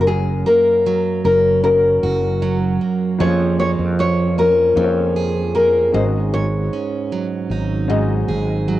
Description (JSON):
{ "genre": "acoustic pop", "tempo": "77 BPM", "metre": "4/4", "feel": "straight", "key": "unclear", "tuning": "A4 = 440 Hz", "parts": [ { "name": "nylon-string guitar", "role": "melody", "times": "0.0-7.5 s", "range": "Ab4 to Db5", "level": "-17 LUFS", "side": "left 2 dB", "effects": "cassette tape" }, { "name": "dark upright piano", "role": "accompaniment", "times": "0.0-8.8 s", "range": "Bb3 to Eb5", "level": "-27 LUFS", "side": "left 5 dB", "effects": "cassette tape" }, { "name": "picked plugged-in steel-string acoustic guitar", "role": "accompaniment", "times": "0.0-8.8 s", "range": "Gb2 to Ab4", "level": "-21 LUFS", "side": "right 5 dB", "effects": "cassette tape" }, { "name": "fretless electric bass", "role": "bass", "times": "0.0-8.8 s", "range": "Gb1 to F2", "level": "-21 LUFS", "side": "equal", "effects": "lush chorus" } ], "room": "light reverb, small room ambience", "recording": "home recording on cassette", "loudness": "-15 LUFS", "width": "side -14 dB against mid", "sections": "0.0-8.8 A section", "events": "none", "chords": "0.0 Gb; 3.2 Bbm7/F; 5.9 Ab7sus4" }